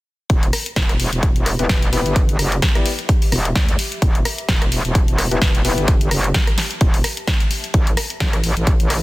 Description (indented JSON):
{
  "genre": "bass house",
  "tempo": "129 BPM",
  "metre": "4/4",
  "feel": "swing 56% on 16ths",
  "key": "E dorian",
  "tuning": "A4 = 439 Hz",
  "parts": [
    { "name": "metallic wobble bass", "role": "bass", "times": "0.3-9.0 s", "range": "E1 to D2", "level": "-20 LUFS", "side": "equal", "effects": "chorus, tube saturation, sidechain pumping" },
    { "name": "electronic kick drum", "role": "drums", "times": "0.3-8.8 s", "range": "none", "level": "-17 LUFS", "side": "equal", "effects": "overdrive, studio reverb" },
    { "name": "house drum kit", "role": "drums", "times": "0.3-9.0 s", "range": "hi-hat, rim click, snare drum", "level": "-22 LUFS", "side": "left 1 dB", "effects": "studio reverb" },
    { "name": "warbly tape-like pad", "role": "texture", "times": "1.5-9.0 s", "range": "G4 to B5", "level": "-36 LUFS", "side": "left 1 dB", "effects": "none" },
    { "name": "clear grand piano", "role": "stabs", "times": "1.6-5.9 s", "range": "B3 to D5", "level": "-25 LUFS", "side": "left 3 dB", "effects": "vintage 12-bit sampler grit, sidechain pumping, digital delay" }
  ],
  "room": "little or no reverb",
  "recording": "dense, heavily limited modern master",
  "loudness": "-15 LUFS",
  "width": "side -19 dB against mid",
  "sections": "0.3-9.0 A section",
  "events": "none",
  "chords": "0.3 Em; 7.7 Aadd9"
}